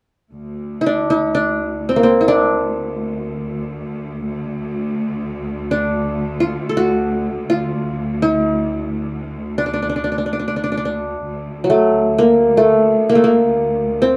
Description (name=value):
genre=Arabic maqam ensemble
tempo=free time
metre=none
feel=none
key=D maqam saba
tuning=A4 = 440 Hz
part: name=clear studio cello section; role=drone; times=0.3-14.2 s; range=D2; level=-26 LUFS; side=equal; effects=none
part: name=qanun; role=melody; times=0.8-14.2 s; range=F#3 to A4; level=-18 LUFS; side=equal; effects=none
room=light reverb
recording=band playing live in one room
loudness=-18 LUFS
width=mono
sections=0.3-14.2 A section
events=none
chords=none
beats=free time